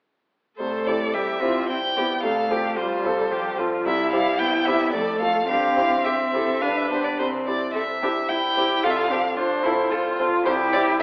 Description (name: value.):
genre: quick classical-period movement for piano quartet.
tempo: 110 BPM.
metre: 3/4.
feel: straight.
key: C major.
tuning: A4 = 441 Hz.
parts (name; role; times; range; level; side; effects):
rich violin; melody; 0.6-11.0 s; C5 to G5; -27 LUFS; equal; none.
rich cello; second line; 0.6-11.0 s; E4 to B4; -29 LUFS; equal; none.
bright concert grand piano; accompaniment; 0.6-11.0 s; C2 to A4; -28 LUFS; equal; none.
rich viola; accompaniment; 0.6-11.0 s; F3 to F4; -30 LUFS; equal; none.
room: wet recital hall reverb, RT60 1.3 s.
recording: AM radio sound.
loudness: -23 LUFS.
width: mono.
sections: 0.6-11.0 A section.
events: none.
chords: 0.6 C; 2.2 F/C; 3.9 C; 4.9 Dm/F; 5.5 C/G; 6.6 G; 7.2 C; 8.8 F/C; 10.5 C.